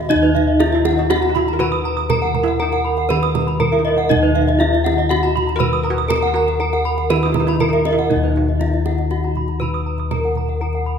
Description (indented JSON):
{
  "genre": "Balinese gamelan",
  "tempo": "120 BPM",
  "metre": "4/4",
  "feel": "straight",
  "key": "Eb pelog",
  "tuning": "A4 = 440 Hz",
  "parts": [
    { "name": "gamelan-type bronze metallophone", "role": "melody", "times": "0.0-11.0 s", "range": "Eb4 to Cb5", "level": "-20 LUFS", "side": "right 1 dB", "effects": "none" },
    { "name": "gamelan-type bronze metallophone", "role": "arpeggios", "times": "0.0-11.0 s", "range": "Eb5 to Cb6", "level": "-24 LUFS", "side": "left 3 dB", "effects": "none" },
    { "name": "gamelan-type bossed gongs", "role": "bass", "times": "0.0-11.0 s", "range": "Eb2 to Bb4", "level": "-20 LUFS", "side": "left 3 dB", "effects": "none" },
    { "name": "kendang", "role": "percussion", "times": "0.1-10.8 s", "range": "none", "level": "-25 LUFS", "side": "right 6 dB", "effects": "none" },
    { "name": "gamelan-type bronze metallophone", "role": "arpeggios", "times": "0.2-10.9 s", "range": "Cb5 to Eb6", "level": "-25 LUFS", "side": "right 6 dB", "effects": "none" },
    { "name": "steel pan", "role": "second line", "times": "0.7-9.9 s", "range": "Eb4 to Cb5", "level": "-26 LUFS", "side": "right 3 dB", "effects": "none" }
  ],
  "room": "moderate scoring stage reverb, RT60 2.0 s",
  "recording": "none",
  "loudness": "-15 LUFS",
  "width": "side -7 dB against mid",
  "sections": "0.1-11.0 A section",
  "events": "none",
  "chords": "none"
}